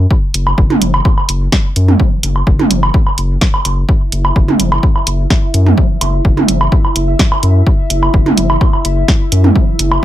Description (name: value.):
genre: minimal techno.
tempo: 127 BPM.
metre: 4/4.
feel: straight.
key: unclear.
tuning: A4 = 440 Hz.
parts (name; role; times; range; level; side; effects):
saturated sub bass; bass; 0.0-10.0 s; F#1 to F#2; -13 LUFS; equal; sidechain pumping.
electronic kick drum; drums; 0.1-9.7 s; none; -12 LUFS; equal; small room ambience.
punchy analog drum machine; drums; 0.3-9.9 s; hi-hat, snare drum; -16 LUFS; equal; small room ambience.
electronic woodblock and toms; percussion; 0.5-10.0 s; none; -15 LUFS; right 2 dB; small room ambience, dub echo.
pulsing gated texture; texture; 3.9-10.0 s; E4 to E5; -21 LUFS; equal; chorus, built-in reverb, sidechain pumping.
room: little or no reverb.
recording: none.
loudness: -10 LUFS.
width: side -13 dB against mid.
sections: 0.0-10.0 A section.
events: none.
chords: 0.0 Esus2/F#.